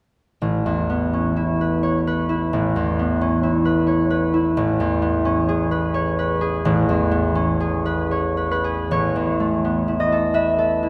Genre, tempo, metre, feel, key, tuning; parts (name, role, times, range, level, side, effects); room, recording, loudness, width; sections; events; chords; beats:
classical, solo harp piece; 72-91 BPM; 3/4; rubato; A major; A4 = 436 Hz
concert harp; solo; 0.4-10.9 s; A1 to E5; -20 LUFS; equal
wet church reverb, RT60 3.2 s; -20 LUFS; mono
0.4-8.9 A section; 8.9-10.9 B section
0.4 Aadd9; 4.6 Amaj9; 8.9 Aadd9
| 0.41 1.13 1.83 | 2.53 3.21 3.88 | 4.55 5.24 5.94 | 6.65 7.37 8.12 | 8.92 9.66 10.37